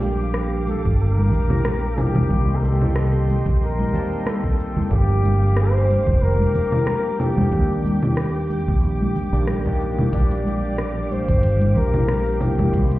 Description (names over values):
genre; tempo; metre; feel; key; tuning
sunset chillout; 92 BPM; 4/4; swing 55% on 16ths; Bb major; A4 = 440 Hz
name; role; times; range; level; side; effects
trumpet with bucket mute; melody; 0.0-13.0 s; G4 to D5; -26 LUFS; left 1 dB; digital delay
overdriven tine electric piano; accompaniment; 0.0-13.0 s; Eb3 to A5; -27 LUFS; equal; fast tremolo, auto-pan, low-pass filter, digital delay
dark chamber string section; sustained chords; 0.0-13.0 s; G4 to D6; -34 LUFS; right 2 dB; none
mellow fretless electric bass; bass; 0.0-13.0 s; F1 to Eb2; -20 LUFS; equal; none
smooth R&B drum kit; drums; 0.0-13.0 s; congas, hi-hat, rim click, shaker; -25 LUFS; equal; small room ambience
congas; percussion; 0.0-12.7 s; none; -26 LUFS; right 1 dB; none
electronic kick drum; drums; 0.9-12.9 s; none; -22 LUFS; equal; small room ambience
room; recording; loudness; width
light reverb, digital ambience; heard muffled through a wall, stone room reverb, EQ; -18 LUFS; side -17 dB against mid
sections
0.0-13.0 A section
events
filter sweep on tine electric piano 0.0-13.0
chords
0.0 Bb6; 2.3 Cm7; 4.9 Gm7; 7.5 Ebmaj7; 10.1 Bb6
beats
0.35 1.00 1.65 | 2.30 2.96 3.61 4.26 | 4.91 5.56 6.22 6.87 | 7.52 8.17 8.82 9.48 | 10.13 10.78 11.43 12.09 | 12.74